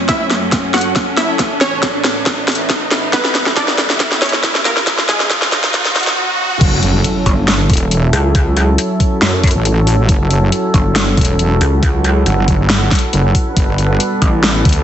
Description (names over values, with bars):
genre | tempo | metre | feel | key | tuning
heavy wobble dubstep | 138 BPM | 4/4 | half-time | F# phrygian | A4 = 440 Hz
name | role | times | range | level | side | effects
rich chamber string section | sustained chords | 0.0-14.8 s | C#2 to B4 | -21 LUFS | equal | sidechain pumping, low-pass filter
riser, swell and impact | sound effects | 0.0-8.3 s | none | -21 LUFS | right 1 dB | none
deep dark ambient pad | texture | 0.0-14.8 s | B3 to B5 | -24 LUFS | right 1 dB | chorus, built-in reverb, sidechain pumping
wide unison pluck | melody | 0.1-6.2 s | G#3 to F#5 | -19 LUFS | equal | cassette tape, tape echo
dubstep drum kit | drums | 0.1-14.8 s | crash cymbal, hi-hat, snare drum | -16 LUFS | equal | studio reverb
electronic kick drum | drums | 0.1-14.7 s | none | -15 LUFS | equal | overdrive, studio reverb
wobble bass | bass | 6.6-14.8 s | E1 to D2 | -14 LUFS | equal | chorus, overdrive
pulsing pluck wobble bass | bass | 7.3-14.6 s | G1 to F#2 | -14 LUFS | equal | chorus, overdrive
room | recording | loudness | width
moderate digital room reverb, RT60 1.0 s | heavily compressed radio sound, multiband compression, high-pass filter, nothing above 8.0 kHz | -11 LUFS | side -10 dB against mid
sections
0.0-6.6 A section; 6.6-14.8 B section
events
build-up 0.0-6.6; drum fill 0.0-6.2; riser 0.0-6.6; filter sweep on string section 0.0-6.6; filter sweep 0.0-6.6; swell 5.7-6.6; drop 6.6-14.8; impact 6.6-8.3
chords
0.0 F#m; 1.4 Aadd9; 3.1 Em; 4.9 C#add9; 6.6 F#m7; 13.6 Gadd9